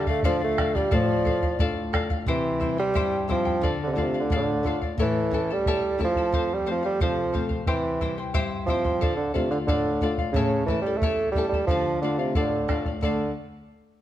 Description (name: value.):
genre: andean folk, Andean ensemble.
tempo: 89 BPM.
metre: 2/4.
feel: straight.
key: D minor.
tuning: A4 = 439 Hz.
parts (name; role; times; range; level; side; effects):
mellow bassoon; melody; 0.0-13.3 s; C3 to A3; -25 LUFS; right 2 dB; none.
polished pan flute; second line; 0.0-1.6 s; D5 to F5; -31 LUFS; left 6 dB; none.
charango; accompaniment; 0.0-13.3 s; E4 to A5; -31 LUFS; left 5 dB; none.
nylon-string guitar; accompaniment; 0.0-13.3 s; E2 to F4; -30 LUFS; left 3 dB; none.
bombo; percussion; 0.1-13.3 s; none; -28 LUFS; right 1 dB; none.
room: moderate recital hall reverb, RT60 1.4 s.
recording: none.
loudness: -22 LUFS.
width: side -12 dB against mid.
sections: 0.0-2.3 A section; 2.3-13.0 B section.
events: none.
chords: 0.0 Dm; 2.3 C; 3.6 Dm; 5.0 A; 6.3 F; 7.7 C; 9.0 Dm; 10.4 A; 11.7 Dm.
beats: 0.24 | 0.92 1.59 | 2.27 2.95 | 3.63 4.30 | 4.98 5.66 | 6.33 7.00 | 7.67 8.35 | 9.02 9.69 | 10.36 11.02 | 11.69 12.36 | 13.02.